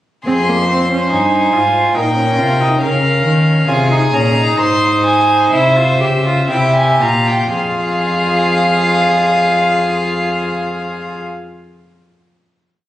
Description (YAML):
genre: classical, baroque-style fugue for string quartet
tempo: 57-71 BPM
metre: 4/4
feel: straight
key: F minor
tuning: A4 = 439 Hz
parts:
  - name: rich violin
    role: melody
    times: 0.3-11.2 s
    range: E5 to C6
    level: -16 LUFS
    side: left 1 dB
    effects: none
  - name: rich violin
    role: second line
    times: 0.3-11.2 s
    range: G4 to C5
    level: -19 LUFS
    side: left 1 dB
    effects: none
  - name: rich viola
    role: accompaniment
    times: 0.3-11.2 s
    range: Bb3 to G4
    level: -18 LUFS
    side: right 1 dB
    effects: none
  - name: dark cello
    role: bass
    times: 0.3-11.2 s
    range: F2 to Eb3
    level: -18 LUFS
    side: equal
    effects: none
room: moderate recital hall reverb, RT60 1.4 s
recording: recorded on a phone in the room, club reverb, compression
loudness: -11 LUFS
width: side -13 dB against mid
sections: 0.3-7.5 exposition; 7.5-11.7 final chord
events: slowing down 0.3-9.6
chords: 0.3 Fm; 2.0 Bbm; 3.7 Fm (rootless); 5.5 C7; 7.5 Fm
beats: | 0.27 1.11 1.96 2.82 | 3.68 4.58 5.52 6.50 | 7.52 8.57 9.61 10.65